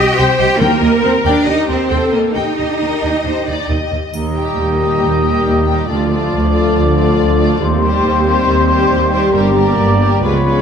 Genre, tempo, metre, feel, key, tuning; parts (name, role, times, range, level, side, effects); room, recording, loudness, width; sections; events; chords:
cinematic, heroic adventure film score; 138 BPM; 4/4; straight; Eb lydian; A4 = 440 Hz
rich symphonic violin section; melody; 0.0-10.6 s; Bb4 to G5; -24 LUFS; left 5 dB
clear symphonic violin section; second line; 0.0-10.6 s; F4 to G5; -24 LUFS; left 4 dB
rich symphonic viola section; accompaniment; 0.0-10.6 s; G3 to Eb5; -20 LUFS; equal
clear symphonic double bass section; bass; 0.0-10.6 s; G1 to Eb2; -19 LUFS; right 2 dB
rich symphonic cello section; bass; 0.0-10.6 s; Db2 to G4; -18 LUFS; right 3 dB
timpani; percussion; 0.6-1.2 s; Eb3; -20 LUFS; equal
dark clarinet; second line; 4.1-10.6 s; F4 to G4; -22 LUFS; left 3 dB
mellow concert flute; second line; 4.1-10.6 s; A5 to C6; -23 LUFS; left 4 dB
dark French horn section; sustained chords; 4.1-10.6 s; A3 to A4; -20 LUFS; left 6 dB
clear trumpet; stabs; 4.1-10.6 s; C5 to Eb5; -20 LUFS; equal
triangle; percussion; 4.1-5.0 s; -38 LUFS; left 4 dB
clear trombone section; sustained chords; 4.2-10.6 s; Bb2 to Cb4; -22 LUFS; right 3 dB
wet scoring stage reverb, RT60 1.6 s; -12 LUFS; side -7 dB against mid
0.0-4.1 A section; 4.1-10.6 B section
0.0 Cm; 0.6 Eb; 5.9 Dm; 7.6 Cm/Eb; 9.3 Gm